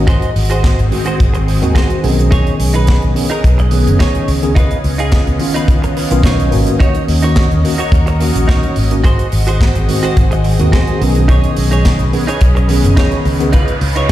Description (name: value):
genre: nu-disco, nu disco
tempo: 107 BPM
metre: 4/4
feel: straight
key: unclear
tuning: A4 = 440 Hz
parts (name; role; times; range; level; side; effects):
- tine electric piano; accompaniment; 0.0-13.5 s; Eb3 to Ab4; -18 LUFS; equal; overdrive, fast stereo tremolo, sidechain pumping, ping-pong delay
- lush unison pad; sustained chords; 0.0-14.1 s; B3 to Eb5; -22 LUFS; equal; chorus, phaser, sidechain pumping
- fingered electric bass with an envelope filter; bass; 0.0-14.1 s; F#1 to Eb2; -14 LUFS; equal; tube saturation
- direct-recorded clean electric guitar; riff; 0.1-14.1 s; D#4 to C#5; -21 LUFS; right 3 dB; lush chorus, ping-pong delay
- kick drum; drums; 0.1-14.1 s; none; -12 LUFS; equal; none
- tight funk drum kit; drums; 0.1-14.1 s; hi-hat, snare drum; -24 LUFS; right 1 dB; none
- riser; sound effects; 12.1-14.1 s; none; -28 LUFS; right 1 dB; none
room: little or no reverb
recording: played on a big sound system in a bare room, large studio reverb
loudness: -10 LUFS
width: side -14 dB against mid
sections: 0.0-14.1 A section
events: riser 12.1-14.1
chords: 0.1 Ab7; 2.3 B69; 4.6 Db9; 6.8 Ebm7; 9.0 Ab7; 11.3 B69; 13.5 Db9